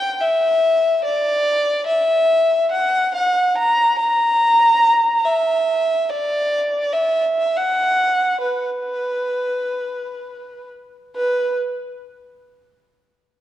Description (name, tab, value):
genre	andean folk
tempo	71 BPM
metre	3/4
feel	straight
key	B minor pentatonic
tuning	A4 = 440 Hz
part	dark violin	solo	0.0-11.5 s	B4 to A#5	-16 LUFS	equal	none
room	moderate concert hall reverb, RT60 1.9 s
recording	worn, warbling old tape, cassette tape, warbly pitch drift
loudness	-16 LUFS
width	side -12 dB against mid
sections	0.0-11.2 A section; 11.2-13.4 B section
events	none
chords	none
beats	0.23 | 1.07 1.91 2.75 | 3.59 4.43 5.27 | 6.11 6.95 7.79 | 8.63 9.47 10.31 | 11.15